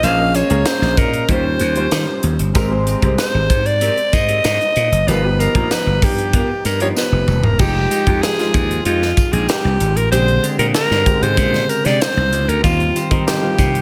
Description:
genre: polished 1980s jazz-funk pop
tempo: 95 BPM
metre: 4/4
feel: straight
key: unclear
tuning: A4 = 440 Hz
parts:
  - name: raspy alto saxophone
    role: melody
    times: 0.0-13.8 s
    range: F4 to F5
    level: -21 LUFS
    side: equal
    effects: none
  - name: warm grand piano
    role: accompaniment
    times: 0.0-13.8 s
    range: Db3 to A#5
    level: -25 LUFS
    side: equal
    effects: subtle chorus
  - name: semi-hollow electric guitar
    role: riff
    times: 0.0-13.8 s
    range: Ab3 to C5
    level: -30 LUFS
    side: equal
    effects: subtle chorus
  - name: slap bass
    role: bass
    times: 0.0-13.8 s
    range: D#1 to Eb3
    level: -21 LUFS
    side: equal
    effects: none
  - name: crisp fusion drum kit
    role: drums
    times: 0.0-13.8 s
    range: crash cymbal, hi-hat, kick drum, snare drum, toms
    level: -22 LUFS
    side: equal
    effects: gated reverb
  - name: tambourine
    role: percussion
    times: 0.0-13.7 s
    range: none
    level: -36 LUFS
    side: equal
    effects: none
room: light reverb, studio reverb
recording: none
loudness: -16 LUFS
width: mono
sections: 0.0-7.6 A section; 7.6-13.8 B section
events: drum fill 7.0-7.6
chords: 0.0 Bbm9; 1.3 Eb13; 2.6 Abmaj9; 5.1 G7alt; 7.6 Fm9; 10.1 Bb13; 12.6 Eb69

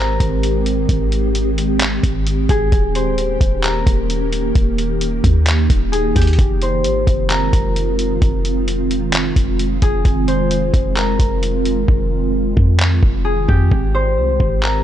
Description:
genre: hip hop, atmospheric cloud-rap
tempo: 131 BPM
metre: 4/4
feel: half-time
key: unclear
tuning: A4 = 440 Hz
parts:
  - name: concert harp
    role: melody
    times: 0.0-14.8 s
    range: G4 to C5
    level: -22 LUFS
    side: left 2 dB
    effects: tape echo
  - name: ethereal airy pad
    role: sustained chords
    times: 0.0-14.8 s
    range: Eb3 to G4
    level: -21 LUFS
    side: right 2 dB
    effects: ensemble chorus, built-in reverb, sidechain pumping
  - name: clean 808-style bass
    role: bass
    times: 0.0-14.8 s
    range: Eb1 to F2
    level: -18 LUFS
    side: equal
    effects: none
  - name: lo-fi sampler-style drum kit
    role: drums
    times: 0.2-14.7 s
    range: handclaps, hi-hat, kick drum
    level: -18 LUFS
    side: equal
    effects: none
room: little or no reverb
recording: nothing above 11.0 kHz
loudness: -14 LUFS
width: side -11 dB against mid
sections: 0.0-14.8 A section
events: hi-hats muted 11.9-13.7; break 13.7-14.8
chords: 0.0 Abmaj7; 2.7 Eb7; 6.4 Fm7; 13.7 Abmaj7

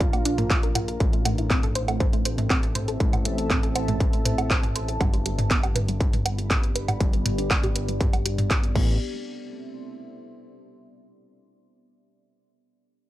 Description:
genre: melodic techno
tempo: 120 BPM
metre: 4/4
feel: straight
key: A minor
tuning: A4 = 440 Hz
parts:
  - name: expressive portamento lead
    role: melody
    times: 0.0-0.9 s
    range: F4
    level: -35 LUFS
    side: right 4 dB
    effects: lush chorus, sidechain pumping, tape echo
  - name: analog pluck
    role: arpeggios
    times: 0.0-9.0 s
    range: G3 to A5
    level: -32 LUFS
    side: right 1 dB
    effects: chorus, phaser, sidechain pumping, analog delay
  - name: fat analog bass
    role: bass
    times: 0.0-9.0 s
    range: G1 to Bb1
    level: -29 LUFS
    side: equal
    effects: sidechain pumping
  - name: electronic kick drum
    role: drums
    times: 0.0-8.9 s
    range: none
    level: -23 LUFS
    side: equal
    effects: distortion, overdrive
  - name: techno drum kit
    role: drums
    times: 0.0-8.9 s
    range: crash cymbal, handclaps, hi-hat, toms, woodblock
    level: -27 LUFS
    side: equal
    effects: overdrive, sidechain pumping on hats, sidechain pumping on toms, sidechain pumping on perc, sidechain pumping on cymbals
  - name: deep dark ambient pad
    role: texture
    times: 0.0-11.0 s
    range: B3 to C6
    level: -34 LUFS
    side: left 1 dB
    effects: chorus, built-in reverb, sidechain pumping
room: little or no reverb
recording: dry, gritty hardware recording, cassette tape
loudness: -21 LUFS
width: side -15 dB against mid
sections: 0.0-9.0 A section; 9.0-11.0 B section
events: filter sweep on synth arpeggio sound 0.0-9.0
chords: 0.0 Bb; 1.0 Am; 5.0 G; 8.8 Am

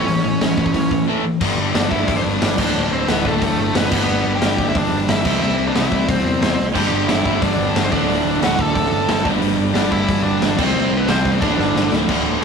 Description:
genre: punk rock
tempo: 180 BPM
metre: 4/4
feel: straight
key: unclear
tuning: A4 = 442 Hz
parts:
  - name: bluesy overdriven lead guitar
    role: melody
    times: 0.0-11.9 s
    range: A3 to A5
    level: -22 LUFS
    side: right 1 dB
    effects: distortion
  - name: distorted electric guitar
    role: riff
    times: 0.0-12.4 s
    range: D2 to C4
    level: -23 LUFS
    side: left 7 dB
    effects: distortion
  - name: fuzz guitar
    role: riff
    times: 0.0-12.4 s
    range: D2 to C4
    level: -24 LUFS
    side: right 1 dB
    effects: distortion
  - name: overdriven electric guitar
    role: riff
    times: 0.0-1.4, 6.7-12.4 s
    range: D2 to C4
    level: -23 LUFS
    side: right 6 dB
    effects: none
  - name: modern bright picked electric bass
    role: bass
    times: 0.1-12.4 s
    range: D1 to E2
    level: -26 LUFS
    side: equal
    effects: none
  - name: raw garage drum kit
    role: drums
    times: 0.1-12.3 s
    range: crash cymbal, hi-hat, kick drum, snare drum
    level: -20 LUFS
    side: equal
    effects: none
room: light reverb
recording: rough rehearsal-room recording, tube saturation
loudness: -15 LUFS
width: side -6 dB against mid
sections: 0.0-1.4 A section; 1.4-12.1 B section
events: drum fill 11.4-12.1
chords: 0.0 A; 1.4 G5; 2.6 D5; 3.9 G; 5.3 C; 6.8 G5; 7.9 D; 9.3 G5; 10.6 C5; 11.4 D5

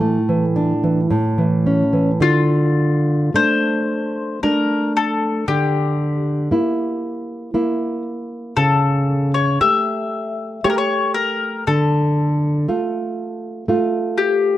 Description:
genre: romantic duo for mandolin and classical guitar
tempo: 57 BPM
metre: 3/4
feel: uneven beats, rubato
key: D minor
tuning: A4 = 443 Hz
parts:
  - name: nylon-string guitar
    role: accompaniment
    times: 0.0-14.6 s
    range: A2 to A4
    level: -18 LUFS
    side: right 1 dB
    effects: none
  - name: mandolin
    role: melody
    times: 2.2-14.6 s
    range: F4 to E5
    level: -20 LUFS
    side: left 5 dB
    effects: none
room: light reverb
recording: dry, close 1970s-style studio recording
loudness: -16 LUFS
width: side -13 dB against mid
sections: 0.0-2.2 A section; 2.2-14.6 B section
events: none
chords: 0.0 Asus4; 1.1 A; 2.2 Dm; 5.5 Em7b5/D; 8.6 A7/C#; 11.7 Dm

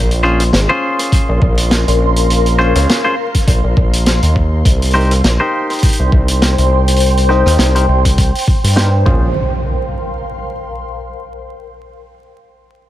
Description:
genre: glitch hop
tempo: 102 BPM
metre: 4/4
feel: swing 56% on 16ths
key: Bb dorian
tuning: A4 = 440 Hz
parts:
  - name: gritty driven synth bass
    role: bass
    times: 0.0-9.3 s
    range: Ab1 to G2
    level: -13 LUFS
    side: equal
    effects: none
  - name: ethereal airy pad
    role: texture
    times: 0.1-11.7 s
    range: Bb4 to C6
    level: -20 LUFS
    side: left 1 dB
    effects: ensemble chorus, built-in reverb, phaser, sidechain pumping
  - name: vintage drum kit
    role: drums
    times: 0.1-8.9 s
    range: hi-hat, rim click, snare drum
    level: -18 LUFS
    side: equal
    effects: none
  - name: semi-hollow electric guitar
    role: stabs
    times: 0.2-9.3 s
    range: Db4 to C5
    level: -18 LUFS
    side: left 1 dB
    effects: sidechain pumping, low-pass filter, digital delay
  - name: electronic kick drum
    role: drums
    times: 1.1-9.2 s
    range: none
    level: -13 LUFS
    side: equal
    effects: overdrive
  - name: impact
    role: sound effects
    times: 9.1-11.4 s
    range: none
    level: -22 LUFS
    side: equal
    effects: none
room: light reverb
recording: vinyl crackle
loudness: -10 LUFS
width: side -14 dB against mid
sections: 0.0-9.4 A section; 9.4-11.7 B section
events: filter sweep on clean electric guitar 0.0-9.4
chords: 0.0 Bbm7; 4.7 Cm7; 9.1 Bbm7; 9.4 Bb5

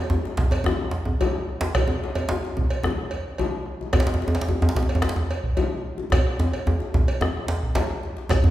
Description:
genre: west african traditional, West African drum ensemble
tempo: 110 BPM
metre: 4/4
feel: straight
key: none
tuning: none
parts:
  - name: djembe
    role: percussion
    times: 0.1-8.4 s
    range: none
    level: -28 LUFS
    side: left 3 dB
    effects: none
  - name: djembe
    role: percussion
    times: 0.1-8.5 s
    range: none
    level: -24 LUFS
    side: right 1 dB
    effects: none
  - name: bombo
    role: percussion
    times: 0.4-8.4 s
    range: none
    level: -26 LUFS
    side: equal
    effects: none
  - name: cowbell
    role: percussion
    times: 0.5-8.4 s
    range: none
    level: -32 LUFS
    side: right 4 dB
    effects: none
  - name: shekere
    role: percussion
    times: 8.3-8.4 s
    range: none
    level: -30 LUFS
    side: equal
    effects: none
room: wet recital hall reverb, RT60 1.7 s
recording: recorded in a church or concert hall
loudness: -22 LUFS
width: side -14 dB against mid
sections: 0.0-8.3 A section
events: drum fill 6.1-8.3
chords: none

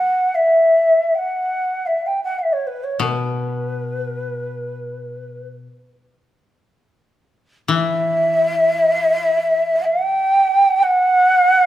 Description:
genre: japanese traditional, Japanese chamber music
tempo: free time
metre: none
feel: none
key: E kumoi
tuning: A4 = 440 Hz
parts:
  - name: mellow hollow shakuhachi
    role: melody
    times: 0.0-11.7 s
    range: B4 to G5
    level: -16 LUFS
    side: equal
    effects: none
  - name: koto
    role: accompaniment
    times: 0.0-10.2 s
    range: B2 to E3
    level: -24 LUFS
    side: left 5 dB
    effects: none
room: moderate recital hall reverb, RT60 1.5 s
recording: none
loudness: -15 LUFS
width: side -13 dB against mid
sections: 0.0-11.7 A section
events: none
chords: none

